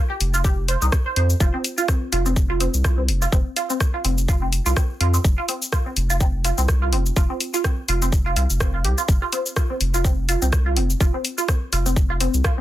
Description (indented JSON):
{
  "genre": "minimal techno",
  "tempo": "125 BPM",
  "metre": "4/4",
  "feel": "swing 56% on 16ths",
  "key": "unclear",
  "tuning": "A4 = 439 Hz",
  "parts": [
    { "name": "resonant blip pluck", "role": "riff", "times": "0.1-12.6 s", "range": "C4 to C5", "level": "-25 LUFS", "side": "right 2 dB", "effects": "phaser, lush chorus, sidechain pumping, digital delay" },
    { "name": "saturated sub bass", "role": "bass", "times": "0.2-12.4 s", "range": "F1 to F2", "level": "-21 LUFS", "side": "equal", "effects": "sidechain pumping" },
    { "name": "garage drum kit", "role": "drums", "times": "0.2-12.6 s", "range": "cabasa, hi-hat, rim click", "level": "-26 LUFS", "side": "left 2 dB", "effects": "soft clipping on snare" },
    { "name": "electronic kick drum", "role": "drums", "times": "0.4-12.6 s", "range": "none", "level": "-19 LUFS", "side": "equal", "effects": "none" }
  ],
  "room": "little or no reverb",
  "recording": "dense, heavily limited modern master",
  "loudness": "-18 LUFS",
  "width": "side -14 dB against mid",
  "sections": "0.0-12.6 A section",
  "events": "none",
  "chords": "0.0 F5"
}